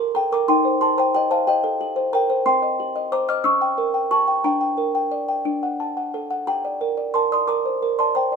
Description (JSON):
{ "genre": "classical, lullaby for music box", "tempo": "60 BPM (dotted quarters)", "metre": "6/8", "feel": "straight", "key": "G minor", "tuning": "A4 = 441 Hz", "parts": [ { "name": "music box", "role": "solo", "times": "0.0-8.4 s", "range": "C4 to F6", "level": "-18 LUFS", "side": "equal", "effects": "none" } ], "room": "light reverb", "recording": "minimal, uncompressed stereo recording", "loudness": "-18 LUFS", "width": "side -5 dB against mid", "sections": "0.0-8.4 A section", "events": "none", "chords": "0.5 Cm/Eb; 2.5 Cm; 3.4 C#dim7; 4.4 Gm/D; 5.5 D; 6.5 Gm" }